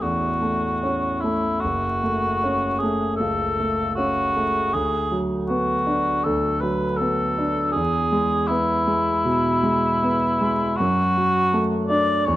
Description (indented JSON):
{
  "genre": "classical, romantic duo for cor anglais and grand piano",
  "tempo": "79 BPM",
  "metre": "4/4",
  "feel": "rubato",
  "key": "unclear",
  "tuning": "A4 = 440 Hz",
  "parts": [
    { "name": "mellow cor anglais", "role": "melody", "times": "0.0-12.4 s", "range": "E4 to D5", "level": "-22 LUFS", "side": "left 1 dB", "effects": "none" },
    { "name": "clear concert grand piano", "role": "accompaniment", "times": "0.0-12.4 s", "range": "F#1 to D4", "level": "-23 LUFS", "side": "right 1 dB", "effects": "none" }
  ],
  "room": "moderate scoring stage reverb, RT60 1.6 s",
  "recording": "close, detailed microphones, vinyl crackle",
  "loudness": "-19 LUFS",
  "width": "side -15 dB against mid",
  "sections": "0.0-12.4 A section",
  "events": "none",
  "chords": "0.0 A; 1.6 F#m; 4.7 Bm/D; 7.7 E; 10.8 D/F#"
}